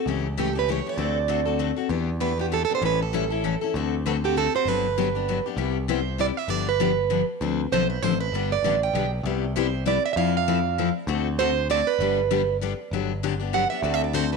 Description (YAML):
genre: acoustic string swing (jazz manouche)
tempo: 196 BPM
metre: 3/4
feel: swing 59% on 8ths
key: G major, C major from 5.6 s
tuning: A4 = 440 Hz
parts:
  - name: picked steel-string acoustic guitar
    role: accompaniment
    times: 0.0-14.4 s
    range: C3 to A4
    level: -26 LUFS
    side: left 13 dB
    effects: none
  - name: modern bright picked electric bass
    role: bass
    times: 0.1-14.4 s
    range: G1 to F2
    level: -28 LUFS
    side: equal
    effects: none
  - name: picked plugged-in steel-string acoustic guitar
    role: melody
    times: 0.4-14.4 s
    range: G4 to G5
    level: -25 LUFS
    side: right 11 dB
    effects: none
room: moderate echo chamber reverb, RT60 1.4 s, studio reverb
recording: 1960s-style stereo with parts hard left and right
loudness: -22 LUFS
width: side -4 dB against mid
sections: 0.0-5.6 A section; 5.6-12.9 B section; 12.9-14.4 C section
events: steel-string acoustic guitar solo 12.9-14.4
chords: 0.1 A7/C#; 1.0 D7; 1.9 Em7; 2.8 A7; 3.7 D7; 4.7 Gmaj7; 5.6 Cmaj7; 6.5 G7; 7.4 Dm7; 8.3 G; 9.2 Cmaj7; 10.2 Fmaj7; 11.1 D7; 12.0 G; 12.9 Gmaj7; 13.8 D7